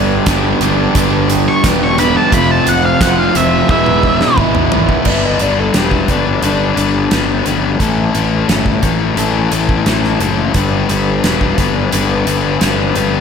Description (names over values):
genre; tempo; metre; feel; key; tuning
classic rock; 87 BPM; 4/4; straight; unclear; A4 = 438 Hz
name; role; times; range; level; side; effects
picked steel-string acoustic guitar; accompaniment; 0.0-13.2 s; E2 to A4; -24 LUFS; right 3 dB; none
crunchy overdriven guitar; riff; 0.0-13.2 s; E2 to B4; -15 LUFS; left 9 dB; none
crunchy overdriven guitar; riff; 0.0-5.1 s; E2 to G4; -16 LUFS; right 13 dB; none
fuzz picked electric bass; bass; 0.0-13.2 s; E1 to A1; -19 LUFS; right 1 dB; overdrive
huge arena drum kit; drums; 0.3-13.1 s; crash cymbal, hi-hat, kick drum, snare drum, toms; -18 LUFS; right 1 dB; none
octave-fuzz lead guitar; melody; 1.5-4.4 s; E5 to C#6; -16 LUFS; equal; distortion
overdriven slide guitar; second line; 5.1-7.1 s; D4 to E5; -20 LUFS; left 2 dB; none
room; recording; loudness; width
moderate large studio reverb, RT60 0.9 s; none; -11 LUFS; side -6 dB against mid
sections
0.0-5.1 A section; 5.1-13.2 B section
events
lead electric guitar solo 0.0-5.1; drum fill 3.7-5.1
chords
0.0 G; 2.3 F; 3.7 E; 5.1 G; 7.8 A; 10.6 G